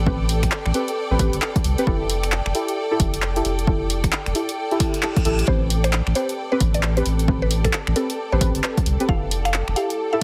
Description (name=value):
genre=UK garage, two-step garage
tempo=133 BPM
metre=4/4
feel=swing 62% on 16ths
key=A minor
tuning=A4 = 442 Hz
part: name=saturated sub bass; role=bass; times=0.0-9.7 s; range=F1 to C2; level=-24 LUFS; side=equal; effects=none
part: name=clear symphonic string section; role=texture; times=0.0-10.2 s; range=A4 to G5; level=-33 LUFS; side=equal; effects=sidechain pumping
part: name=deep mellow chord stab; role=stabs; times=0.1-10.2 s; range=C4 to B4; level=-28 LUFS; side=equal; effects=chorus, tape echo
part: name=electronic kick drum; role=drums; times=0.1-9.2 s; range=none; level=-25 LUFS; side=equal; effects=overdrive
part: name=punchy analog drum machine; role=drums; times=0.3-10.0 s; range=finger snaps, handclaps, hi-hat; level=-28 LUFS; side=equal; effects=overdrive
part: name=reverse cymbal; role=sound effects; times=4.8-5.5 s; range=none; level=-36 LUFS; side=equal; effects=none
part: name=mallet-like synth pluck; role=melody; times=5.5-10.2 s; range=A4 to F5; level=-30 LUFS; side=equal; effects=chorus, digital delay
part: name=ethereal airy pad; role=sustained chords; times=6.3-10.2 s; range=A4 to A5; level=-37 LUFS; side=equal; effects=ensemble chorus, built-in reverb, tremolo, sidechain pumping
room=light reverb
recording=heavily compressed radio sound, multiband compression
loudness=-21 LUFS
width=mono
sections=0.0-10.2 A section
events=reverse cymbal 4.8-5.5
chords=0.0 Am9; 1.9 Fmaj9; 5.5 Am9; 9.1 Fmaj9